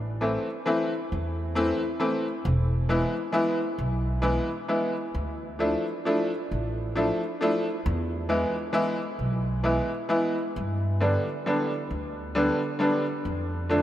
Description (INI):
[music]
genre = musette waltz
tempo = 134 BPM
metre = 3/4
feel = rubato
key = unclear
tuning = A4 = 440 Hz
[part]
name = upright bass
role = bass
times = 0.0-13.8 s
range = E1 to G2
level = -28 LUFS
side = equal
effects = none
[part]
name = bright upright piano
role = accompaniment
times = 0.2-13.8 s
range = D3 to E4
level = -26 LUFS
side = equal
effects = none
[sound]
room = wet cathedral reverb, RT60 6.0 s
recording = in a vast, echoing space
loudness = -24 LUFS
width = side -12 dB against mid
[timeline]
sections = 0.0-13.8 A section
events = none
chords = 0.0 Am; 2.5 E; 5.1 Dmadd9; 7.9 E; 10.6 G; 13.2 Dm/F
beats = 0.22 0.67 | 1.12 1.57 2.02 | 2.46 2.90 3.35 | 3.79 4.24 4.69 | 5.14 5.60 6.06 | 6.52 6.97 7.42 | 7.86 8.30 8.74 | 9.19 9.64 10.10 | 10.56 11.02 11.47 | 11.91 12.36 12.80 | 13.25 13.69